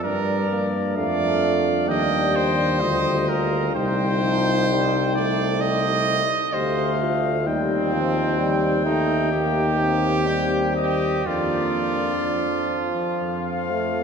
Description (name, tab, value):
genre	classical, brass quintet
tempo	64 BPM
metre	4/4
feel	uneven beats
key	unclear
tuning	A4 = 440 Hz
part	clear trumpet	melody	0.0-14.0 s	D5 to G5	-28 LUFS	left 5 dB	none
part	clear trumpet	second line	0.0-14.0 s	C4 to Eb5	-24 LUFS	right 4 dB	none
part	clear French horn	accompaniment	0.0-14.0 s	C4 to G4	-28 LUFS	left 4 dB	none
part	warm trombone	accompaniment	0.0-14.0 s	F3 to C4	-27 LUFS	right 1 dB	none
part	warm tuba	bass	0.0-14.0 s	C2 to G2	-25 LUFS	equal	none
room	wet cathedral reverb, RT60 4.9 s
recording	minimal, uncompressed stereo recording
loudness	-19 LUFS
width	side -6 dB against mid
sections	0.0-14.0 A section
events	none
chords	0.0 Gm; 1.9 Eb; 3.8 Cm; 7.5 Cm/Eb; 11.3 Bb/F; 13.2 F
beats	| 0.04 0.97 1.89 2.82 | 3.76 4.69 5.62 6.54 | 7.47 8.39 9.32 10.28 | 11.26 12.24 13.22